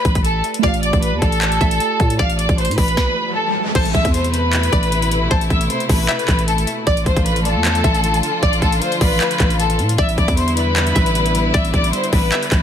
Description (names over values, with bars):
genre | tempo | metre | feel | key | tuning
hip hop, trap | 154 BPM | 4/4 | half-time | A minor | A4 = 440 Hz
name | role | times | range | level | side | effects
warm studio violin section | melody | 0.0-12.6 s | A4 to F6 | -20 LUFS | left 2 dB | low-pass filter, digital delay
string-like resonator pluck | second line | 0.0-12.6 s | C5 to E5 | -26 LUFS | equal | chorus, phaser, digital delay
muted felt-like synth keys | accompaniment | 0.0-3.7 s | A3 to D5 | -26 LUFS | right 8 dB | chorus, low-pass filter
growling 808-style bass | bass | 0.1-12.6 s | A1 to A2 | -19 LUFS | equal | none
trap drum kit | drums | 0.1-12.6 s | crash cymbal, handclaps, hi-hat, kick drum, snare drum | -19 LUFS | equal | overdrive
riser | sound effects | 3.1-3.8 s | none | -27 LUFS | right 2 dB | none
dark chamber string section | sustained chords | 3.8-12.6 s | B2 to F4 | -23 LUFS | equal | none
room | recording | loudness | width
digital ambience | dense, heavily limited modern master | -14 LUFS | side -9 dB against mid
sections
0.0-3.8 A section; 3.8-12.6 B section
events
riser 3.1-3.8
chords
0.0 Em7/A; 0.6 F6/A; 3.8 Amadd9; 6.9 Dm/A; 10.0 Em7/A